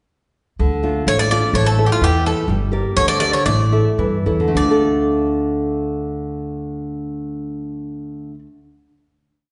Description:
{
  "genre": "greek folk, Greek bouzouki band",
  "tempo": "101-127 BPM",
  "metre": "2/4",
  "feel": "straight",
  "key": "D harmonic minor",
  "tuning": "A4 = 436 Hz",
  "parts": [
    { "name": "nylon-string guitar", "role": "accompaniment", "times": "0.6-8.5 s", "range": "D3 to E5", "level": "-22 LUFS", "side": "equal", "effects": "none" },
    { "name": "upright bass", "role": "bass", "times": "0.6-8.4 s", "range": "G1 to G2", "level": "-23 LUFS", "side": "equal", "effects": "none" },
    { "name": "Greek bouzouki", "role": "melody", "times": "1.1-8.4 s", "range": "F4 to D5", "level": "-22 LUFS", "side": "equal", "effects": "none" }
  ],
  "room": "wet recital hall reverb, RT60 1.4 s",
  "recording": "recorded in a church or concert hall, nothing above 10.8 kHz",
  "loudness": "-18 LUFS",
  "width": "mono",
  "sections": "0.6-4.6 A section; 4.6-6.9 final chord",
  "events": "slowing down 2.5-4.6",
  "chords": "0.6 Dm; 1.5 A; 2.5 Gm; 3.5 A; 4.6 Dm"
}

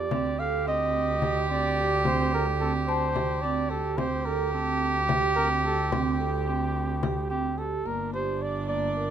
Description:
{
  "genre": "contemporary instrumental, chamber music in an uneven meter",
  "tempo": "217 BPM (eighths)",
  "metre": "7/8",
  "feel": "straight",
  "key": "unclear",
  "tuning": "A4 = 439 Hz",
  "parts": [
    { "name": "warm flugelhorn", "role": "melody", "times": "0.0-9.1 s", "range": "G4 to F5", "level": "-30 LUFS", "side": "right 1 dB", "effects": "none" },
    { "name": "vibraphone with soft mallets", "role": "arpeggios", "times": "0.0-9.1 s", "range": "Bb3 to Bb4", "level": "-31 LUFS", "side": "right 6 dB", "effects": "none" },
    { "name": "clear double bass", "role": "bass", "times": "0.0-9.1 s", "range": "G1 to F2", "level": "-31 LUFS", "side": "right 1 dB", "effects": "none" },
    { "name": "worn celesta", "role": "texture", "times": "0.0-4.9 s", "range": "F5 to D6", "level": "-34 LUFS", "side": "left 13 dB", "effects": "none" },
    { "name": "rich cello", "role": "second line", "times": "0.1-9.1 s", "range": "D4 to G4", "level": "-30 LUFS", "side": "right 2 dB", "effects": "none" },
    { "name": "frame drum", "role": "percussion", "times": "0.1-7.3 s", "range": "none", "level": "-32 LUFS", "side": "left 6 dB", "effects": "none" }
  ],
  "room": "light reverb",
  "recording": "close, detailed microphones",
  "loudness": "-24 LUFS",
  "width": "side -9 dB against mid",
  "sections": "0.0-7.9 A section; 7.9-9.1 B section",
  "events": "none",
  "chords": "0.1 D7sus4; 7.9 Gm"
}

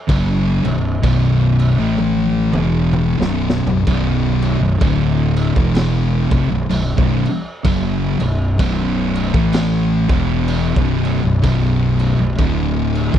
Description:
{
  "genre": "stoner and doom metal",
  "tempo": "63 BPM",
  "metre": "4/4",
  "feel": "swing 59% on 8ths",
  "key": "B minor",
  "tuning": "A4 = 442 Hz",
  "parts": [
    { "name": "thick fuzz guitar", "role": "riff", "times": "0.1-13.2 s", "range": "B1 to A3", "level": "-19 LUFS", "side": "left 7 dB", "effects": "distortion" },
    { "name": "thick fuzz guitar", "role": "riff", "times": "0.1-13.2 s", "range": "B1 to A3", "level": "-19 LUFS", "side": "right 7 dB", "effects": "distortion" },
    { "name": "fuzz fingered electric bass", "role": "bass", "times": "0.1-13.2 s", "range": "B0 to A1", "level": "-21 LUFS", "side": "equal", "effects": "overdrive" },
    { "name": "raw garage drum kit", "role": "drums", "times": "0.1-13.2 s", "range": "crash cymbal, kick drum, snare drum, toms", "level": "-22 LUFS", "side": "equal", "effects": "none" }
  ],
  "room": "small room ambience",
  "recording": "none",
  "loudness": "-14 LUFS",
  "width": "side -10 dB against mid",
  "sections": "0.0-13.2 A section",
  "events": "drum fill 2.0-3.9",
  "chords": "0.0 Bm"
}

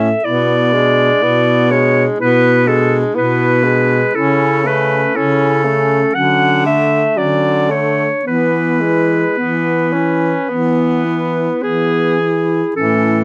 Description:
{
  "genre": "classical, lyrical piece for single-reed quartet",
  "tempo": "52-62 BPM",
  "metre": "4/4",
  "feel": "rubato",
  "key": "unclear",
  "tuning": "A4 = 440 Hz",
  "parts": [
    { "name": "bright clarinet", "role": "melody", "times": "0.0-13.2 s", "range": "A4 to F#5", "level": "-18 LUFS", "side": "equal", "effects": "none" },
    { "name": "warm clarinet", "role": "second line", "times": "0.0-13.2 s", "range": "B3 to A4", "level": "-24 LUFS", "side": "equal", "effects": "none" },
    { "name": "clear tenor saxophone", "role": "accompaniment", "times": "0.0-13.2 s", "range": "E3 to G#4", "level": "-20 LUFS", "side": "equal", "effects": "none" },
    { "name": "clear baritone saxophone", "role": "bass", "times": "0.0-13.2 s", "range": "A2 to E3", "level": "-20 LUFS", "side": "equal", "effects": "none" }
  ],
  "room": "moderate small room reverb, RT60 0.5 s",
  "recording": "none",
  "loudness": "-14 LUFS",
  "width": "mono",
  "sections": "0.0-13.2 A section",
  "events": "none",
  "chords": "0.2 E7/B; 4.2 A/C#; 6.2 Dmaj7; 8.3 E"
}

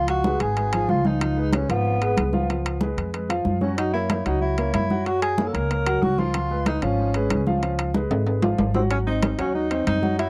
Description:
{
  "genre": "Afro-Cuban jazz",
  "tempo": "187 BPM",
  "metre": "4/4",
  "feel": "straight",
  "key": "Db mixolydian",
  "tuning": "A4 = 441 Hz",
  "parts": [
    { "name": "mellow tenor saxophone", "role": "melody", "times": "0.0-10.3 s", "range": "Cb4 to Bb4", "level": "-28 LUFS", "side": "equal", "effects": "tape echo" },
    { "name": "warm concert grand piano", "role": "accompaniment", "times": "0.0-10.3 s", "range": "F3 to Gb5", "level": "-29 LUFS", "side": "equal", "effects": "none" },
    { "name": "upright bass", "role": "bass", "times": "0.0-10.3 s", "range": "Ab1 to Gb2", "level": "-28 LUFS", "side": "equal", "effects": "none" },
    { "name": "congas", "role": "percussion", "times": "0.1-10.3 s", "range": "none", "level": "-29 LUFS", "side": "equal", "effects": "none" },
    { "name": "timbales", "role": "percussion", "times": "0.1-10.3 s", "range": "none", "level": "-30 LUFS", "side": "equal", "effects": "none" }
  ],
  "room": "little or no reverb",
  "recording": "dry, close 1970s-style studio recording",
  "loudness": "-23 LUFS",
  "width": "mono",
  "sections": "0.0-10.3 A section",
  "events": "drum fill 8.1-8.9",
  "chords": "0.0 Db7; 3.8 Gb7; 6.3 Db7; 8.9 Ab7"
}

